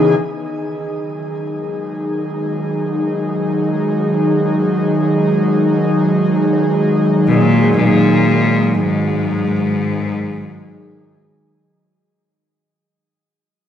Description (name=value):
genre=ambient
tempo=free time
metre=none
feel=none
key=G# minor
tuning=A4 = 435 Hz
part: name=airy breathy pad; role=sustained chords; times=0.0-11.6 s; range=C#3 to G#4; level=-15 LUFS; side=equal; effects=chorus, cassette tape, shimmer reverb
part: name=bright cello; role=melody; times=7.3-11.2 s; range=G#2 to B2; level=-16 LUFS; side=left 2 dB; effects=shimmer reverb
room=wet studio reverb, RT60 0.6 s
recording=home recording on cassette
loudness=-14 LUFS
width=side -9 dB against mid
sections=0.2-11.6 A section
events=fade-in on analog synth pad 0.2-11.6; fade-out 7.8-11.6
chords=0.2 G#m7